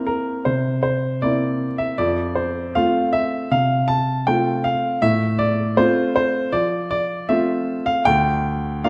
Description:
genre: classical-period piano sonatina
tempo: 79 BPM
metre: 4/4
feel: rubato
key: F major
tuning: A4 = 438 Hz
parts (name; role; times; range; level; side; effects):
- clear baby grand piano; solo; 0.0-8.9 s; D2 to A5; -20 LUFS; equal; none
room: wet recital hall reverb, RT60 1.4 s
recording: lossy compression artefacts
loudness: -20 LUFS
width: mono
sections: 0.0-8.9 A section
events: none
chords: 0.0 C7; 2.0 F; 5.0 F/A; 8.1 N.C.

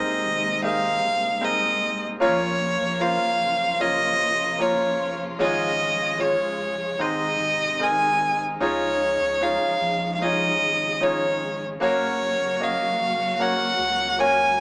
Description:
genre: pop ballad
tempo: 75 BPM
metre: 4/4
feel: straight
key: Db major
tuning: A4 = 437 Hz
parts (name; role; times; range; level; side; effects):
- clear violin; melody; 0.0-14.6 s; Db5 to Ab5; -22 LUFS; equal; none
- clear concert grand piano; accompaniment; 0.0-14.6 s; Ab2 to Eb5; -25 LUFS; equal; none
- warm studio string section; sustained chords; 0.0-14.6 s; C3 to Gb4; -32 LUFS; equal; none
- warm sub bass; bass; 0.0-14.6 s; Eb1 to Db2; -36 LUFS; equal; none
room: moderate studio reverb, RT60 0.6 s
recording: band playing live in one room, small speaker sound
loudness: -20 LUFS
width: side -28 dB against mid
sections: 0.0-14.6 A section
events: none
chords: 0.0 Abadd9; 2.2 Bbm; 5.4 Db/Ab; 7.0 Ab; 8.6 Dbadd9; 11.8 Gb

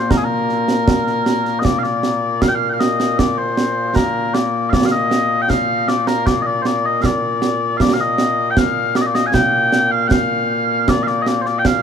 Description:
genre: scottish traditional, Scottish pipe music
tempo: 78 BPM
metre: 2/4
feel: straight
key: Bb major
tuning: A4 = 440 Hz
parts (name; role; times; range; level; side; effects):
- mellow small bagpipes; melody; 0.0-11.8 s; Bb2 to Ab5; -16 LUFS; left 2 dB; none
- concert snare drum and concert bass drum; drums; 0.1-11.8 s; none; -19 LUFS; right 3 dB; none
room: light reverb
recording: none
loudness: -14 LUFS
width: side -8 dB against mid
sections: 0.0-1.6 A section; 1.6-11.8 B section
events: none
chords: none

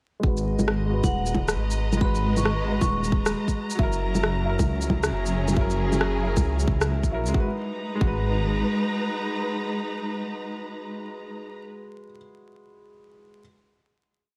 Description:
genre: future garage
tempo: 135 BPM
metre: 4/4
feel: swing 62% on 16ths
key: G# minor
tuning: A4 = 439 Hz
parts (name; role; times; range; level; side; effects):
- clear upright piano; accompaniment; 0.2-13.4 s; F#3 to B4; -34 LUFS; equal; sidechain pumping, low-pass filter, tape echo
- warm studio string section; sustained chords; 0.2-11.6 s; F#3 to A#5; -32 LUFS; equal; sidechain pumping
- dark detuned saw bass; bass; 0.2-8.6 s; D#1 to C#2; -29 LUFS; equal; tube saturation, sidechain pumping
- electronic kick drum; drums; 0.2-8.2 s; none; -26 LUFS; equal; none
- electronic shaker, bongos and rim click; drums; 0.4-7.3 s; none; -30 LUFS; equal; none
- vibraphone with medium hard mallets; melody; 1.0-3.3 s; F#5 to C#6; -35 LUFS; equal; tape echo
room: light reverb, studio ambience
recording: vinyl crackle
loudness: -25 LUFS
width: mono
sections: 0.2-7.3 groove; 7.3-10.9 final chord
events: filter sweep on upright piano 0.2-7.3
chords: 0.2 G#m7; 3.8 F#7; 7.3 G#m7

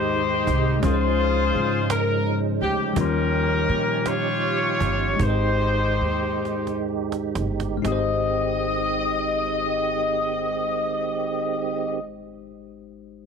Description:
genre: slow gospel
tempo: 40-56 BPM (dotted quarters)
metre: 6/8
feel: straight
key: Ab major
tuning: A4 = 438 Hz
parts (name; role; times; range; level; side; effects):
- warm horn section; melody; 0.0-12.0 s; Db4 to Eb5; -24 LUFS; left 2 dB; none
- bell-like tine electric piano; accompaniment; 0.0-13.3 s; Ab1 to C6; -28 LUFS; left 10 dB; medium stereo tremolo
- tonewheel organ; sustained chords; 0.0-12.0 s; Eb3 to G4; -29 LUFS; right 16 dB; slow rotary speaker, chorus vibrato
- upright bass; bass; 0.0-12.0 s; G1 to Bb2; -27 LUFS; right 1 dB; none
- cajon; drums; 0.1-8.1 s; none; -29 LUFS; right 5 dB; none
room: light reverb, studio reverb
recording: 1960s-style stereo with parts hard left and right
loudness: -21 LUFS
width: side -6 dB against mid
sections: 0.0-7.8 A section; 7.8-13.3 B section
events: slowing down 3.0-7.8; drum fill 6.4-7.8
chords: 0.0 Abmaj7; 0.8 Dbmaj7; 3.0 Eb13; 5.2 Abmaj7

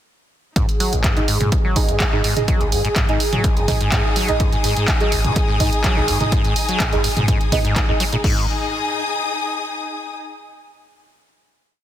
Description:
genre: acid house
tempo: 125 BPM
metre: 4/4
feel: straight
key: unclear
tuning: A4 = 440 Hz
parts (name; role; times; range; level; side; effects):
- warm analog pad; sustained chords; 0.6-8.3 s; G#4; -27 LUFS; right 2 dB; chorus, sidechain pumping
- acid bass, saw; riff; 0.6-8.5 s; G#1 to B3; -23 LUFS; equal; overdrive, wide subtle chorus, sidechain pumping, ping-pong delay
- electronic kick drum; drums; 0.6-8.3 s; none; -20 LUFS; equal; none
- punchy analog drum machine; drums; 0.6-8.3 s; crash cymbal, handclaps, hi-hat, toms; -23 LUFS; right 1 dB; none
- warm symphonic string section; texture; 0.6-10.1 s; D#4 to D#6; -26 LUFS; left 3 dB; sidechain pumping
- deep mellow chord stab; stabs; 1.2-8.4 s; D#4 to D#5; -26 LUFS; right 4 dB; chorus, phaser, cassette tape, ping-pong delay
room: light reverb, digital ambience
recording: dense, heavily limited modern master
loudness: -16 LUFS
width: side -11 dB against mid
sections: 0.6-8.2 groove; 8.2-10.2 final chord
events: fade-in on string section 0.6-8.2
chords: 0.6 G#5

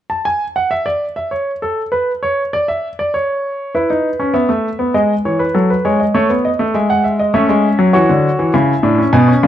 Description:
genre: classical, baroque-style 3-part fugue for grand piano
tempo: 100 BPM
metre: 3/4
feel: straight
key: A major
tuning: A4 = 441 Hz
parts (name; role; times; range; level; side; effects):
- clear grand piano; solo; 0.1-9.5 s; A2 to A5; -13 LUFS; equal; none
room: moderate stone room reverb, RT60 1.3 s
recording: dark, warm production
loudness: -13 LUFS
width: side -11 dB against mid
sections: 0.1-9.5 A section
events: none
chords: 0.1 N.C.; 3.7 E5; 4.9 E/G#; 5.5 B7/F#; 6.7 E/G#; 7.3 A (rootless); 8.5 A/C#

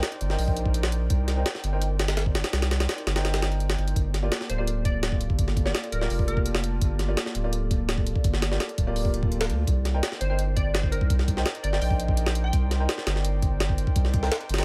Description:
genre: drum and bass, jungle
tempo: 168 BPM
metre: 4/4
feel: straight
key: unclear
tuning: A4 = 440 Hz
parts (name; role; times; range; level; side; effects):
- warbly tape-like pad; sustained chords; 0.0-14.6 s; Bb3 to A5; -38 LUFS; equal; chorus, built-in reverb
- jungle sampler-style drum kit; drums; 0.0-14.6 s; hi-hat, kick drum, snare drum; -29 LUFS; equal; none
- saturated sub bass; bass; 0.2-14.6 s; D1 to D2; -28 LUFS; equal; none
- warm concert grand piano; stabs; 0.3-14.6 s; Bb3 to G5; -37 LUFS; equal; vintage 12-bit sampler grit, low-pass filter, dub echo
- glassy wavetable pluck; melody; 4.5-6.6, 10.2-12.8 s; Bb4 to G5; -37 LUFS; equal; chorus, dub echo
room: little or no reverb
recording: none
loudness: -25 LUFS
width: mono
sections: 0.0-14.6 A section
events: none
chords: 0.0 Cm7; 4.0 Gm7; 9.7 Cm7

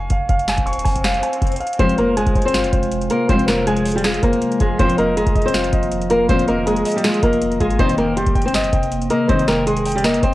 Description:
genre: hip hop, trap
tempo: 160 BPM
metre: 4/4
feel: half-time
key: F minor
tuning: A4 = 444 Hz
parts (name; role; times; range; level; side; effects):
- warm concert grand piano; accompaniment; 0.0-10.3 s; F4 to Db6; -23 LUFS; equal; low-pass filter
- clean 808-style bass; bass; 0.0-10.3 s; Eb1 to Ab1; -23 LUFS; equal; none
- booming analog drum machine; drums; 0.1-10.3 s; hi-hat, kick drum, snare drum; -22 LUFS; equal; cassette tape
- swell; sound effects; 0.5-1.8 s; none; -29 LUFS; left 3 dB; none
- flamenco guitar; melody; 1.8-10.3 s; G3 to C5; -18 LUFS; left 1 dB; low-pass filter, cassette tape
- glassy FM pad; sustained chords; 2.6-10.3 s; C3 to Bb3; -26 LUFS; right 1 dB; ensemble chorus, built-in reverb, phaser
- warm symphonic string section; stabs; 1.8-9.6 s; C2 to F3; -25 LUFS; left 1 dB; none
room: moderate spring reverb, RT60 1.6 s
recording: home recording on cassette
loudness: -15 LUFS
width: side -16 dB against mid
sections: 0.0-1.8 A section; 1.8-10.3 B section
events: swell 0.5-1.8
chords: 0.0 Eb9sus4; 1.8 Fm; 4.8 Cm7/F

